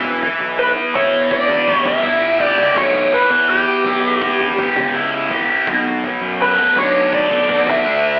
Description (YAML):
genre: psychedelic rock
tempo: 82 BPM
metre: 4/4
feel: straight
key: E dorian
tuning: A4 = 438 Hz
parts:
  - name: thick fuzz guitar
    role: riff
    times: 0.0-8.2 s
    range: B2 to G4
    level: -20 LUFS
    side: equal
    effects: distortion, phaser
  - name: fuzz picked electric bass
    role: bass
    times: 0.0-8.2 s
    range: E1 to F#2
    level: -28 LUFS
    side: equal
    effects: overdrive
  - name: cloth-damped thuddy drum kit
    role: drums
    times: 0.0-7.8 s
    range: kick drum, toms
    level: -33 LUFS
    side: equal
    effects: none
  - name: lead guitar through a small cranked amp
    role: melody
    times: 0.6-8.2 s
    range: G4 to E5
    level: -18 LUFS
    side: equal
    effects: wah, overdrive
room: moderate large studio reverb, RT60 0.9 s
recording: band playing live in one room, telephone sound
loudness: -16 LUFS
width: mono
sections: 0.0-8.2 A section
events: none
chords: 0.0 Em; 5.7 Bm7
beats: 0.58 1.31 2.04 | 2.77 3.50 4.22 4.95 | 5.68 6.41 7.13 7.86